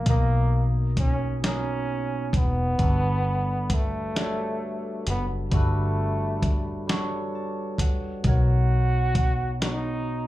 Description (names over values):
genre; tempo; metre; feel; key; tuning
slow six-eight R&B; 44 BPM (dotted quarters); 6/8; straight; unclear; A4 = 440 Hz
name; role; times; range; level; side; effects
breathy flugelhorn; melody; 0.0-10.3 s; A3 to F#4; -29 LUFS; right 1 dB; slapback echo, tape echo
barky tine electric piano; accompaniment; 0.0-10.3 s; B2 to A5; -31 LUFS; left 1 dB; phaser, slapback echo
vintage muted fingered electric bass; bass; 0.0-10.3 s; E1 to B1; -25 LUFS; equal; none
dusty soul sampler-style drum kit; drums; 0.1-9.8 s; hi-hat, kick drum, snare drum; -25 LUFS; equal; none
room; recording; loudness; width
little or no reverb; live gig heard through the venue's PA, club reverb; -22 LUFS; side -15 dB against mid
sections
0.0-10.3 A section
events
tine electric piano fill 6.9-8.2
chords
0.0 Bmaj9; 2.8 Gmaj9; 8.2 Bmaj9